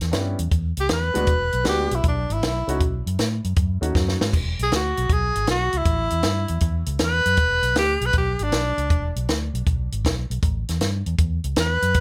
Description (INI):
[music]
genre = electric blues shuffle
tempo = 158 BPM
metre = 4/4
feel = swing 68% on 8ths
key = unclear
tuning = A4 = 440 Hz
[part]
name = vintage muted fingered electric bass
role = bass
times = 0.0-12.0 s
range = E1 to A2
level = -27 LUFS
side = equal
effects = none
[part]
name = compact cocktail drum kit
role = drums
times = 0.0-12.0 s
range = crash cymbal, hi-hat, kick drum, snare drum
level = -25 LUFS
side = equal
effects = none
[part]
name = warm upright piano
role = accompaniment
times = 0.1-4.3 s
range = G3 to F#4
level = -30 LUFS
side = equal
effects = none
[part]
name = breathy tenor saxophone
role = melody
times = 0.8-9.2, 11.6-12.0 s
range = D4 to B4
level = -25 LUFS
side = equal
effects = plate reverb
[sound]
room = light reverb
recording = none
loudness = -22 LUFS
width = mono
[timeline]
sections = 0.0-4.3 A section; 4.3-12.0 A section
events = drum fill 4.0-4.3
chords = 0.0 A7 (rootless); 1.3 E7; 2.8 B7; 4.3 E7; 5.9 A7(no3); 7.4 E7(no3); 10.4 A7(no3)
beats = 0.13 0.52 0.90 | 1.28 1.66 2.04 2.42 | 2.81 3.19 3.57 3.95 | 4.33 4.71 5.09 5.47 | 5.86 6.24 6.62 7.00 | 7.38 7.76 8.14 8.52 | 8.90 9.28 9.66 10.04 | 10.43 10.81 11.19 11.57 | 11.95